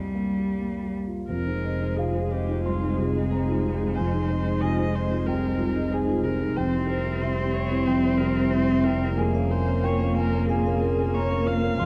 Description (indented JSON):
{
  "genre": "neoclassical piano and strings",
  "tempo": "92 BPM",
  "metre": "4/4",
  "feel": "rubato",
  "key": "F minor",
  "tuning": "A4 = 439 Hz",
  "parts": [
    { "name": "rich cello", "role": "second line", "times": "0.0-11.9 s", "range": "G3 to C4", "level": "-33 LUFS", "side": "equal", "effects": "none" },
    { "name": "dark concert grand piano", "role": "accompaniment", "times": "0.0-11.9 s", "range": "C2 to C6", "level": "-29 LUFS", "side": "equal", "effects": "none" },
    { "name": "rich viola", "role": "accompaniment", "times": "1.3-11.9 s", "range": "F4 to F5", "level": "-35 LUFS", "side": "equal", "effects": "none" },
    { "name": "warbly tape-like pad", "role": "sustained chords", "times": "2.4-11.9 s", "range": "G3 to E5", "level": "-35 LUFS", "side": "equal", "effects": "chorus, built-in reverb" },
    { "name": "vibraphone with medium mallets", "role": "arpeggios", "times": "1.3-11.9 s", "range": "C4 to Ab5", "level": "-34 LUFS", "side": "equal", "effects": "tape echo" },
    { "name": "clear double bass", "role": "bass", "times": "1.3-11.9 s", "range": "F1", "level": "-31 LUFS", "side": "equal", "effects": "none" }
  ],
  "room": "moderate concert hall reverb, RT60 1.7 s",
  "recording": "dark, warm production",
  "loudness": "-25 LUFS",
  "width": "mono",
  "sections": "0.0-1.3 A section; 1.3-11.9 A section",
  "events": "none",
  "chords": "0.0 C7sus4; 1.3 Fm7; 6.6 C/F; 9.2 Bbm7/F",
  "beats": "0.61 | 1.31 1.98 2.66 3.32 | 3.98 4.64 5.28 5.93 | 6.58 7.23 7.88 8.53 | 9.18 9.84 10.49 11.14 | 11.78"
}